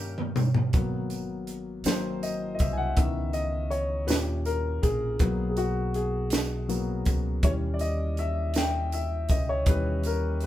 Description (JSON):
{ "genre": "slow gospel", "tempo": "54 BPM (dotted quarters)", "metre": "6/8", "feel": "straight", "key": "G# minor", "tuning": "A4 = 441 Hz", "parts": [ { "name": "warm upright piano", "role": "accompaniment", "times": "0.0-10.5 s", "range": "A#2 to G#5", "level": "-30 LUFS", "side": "left 3 dB", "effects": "none" }, { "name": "fingered electric bass", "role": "bass", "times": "0.0-10.5 s", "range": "G#1 to G2", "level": "-30 LUFS", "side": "equal", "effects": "none" }, { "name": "crisp fusion drum kit", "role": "drums", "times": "0.2-10.5 s", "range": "hi-hat, kick drum, snare drum, toms", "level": "-27 LUFS", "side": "right 1 dB", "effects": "none" }, { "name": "tambourine", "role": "percussion", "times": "0.4-10.4 s", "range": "none", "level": "-41 LUFS", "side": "right 7 dB", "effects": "none" } ], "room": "light reverb", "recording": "band playing live in one room", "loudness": "-25 LUFS", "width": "side -13 dB against mid", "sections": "0.7-10.5 A section", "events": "drum fill 0.0-0.7; upright piano solo 0.7-10.5", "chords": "0.0 D#7; 0.7 G#m9; 1.9 G#7; 3.0 C#m7; 4.1 D#7; 5.2 G#m9/B; 7.4 D#7b9" }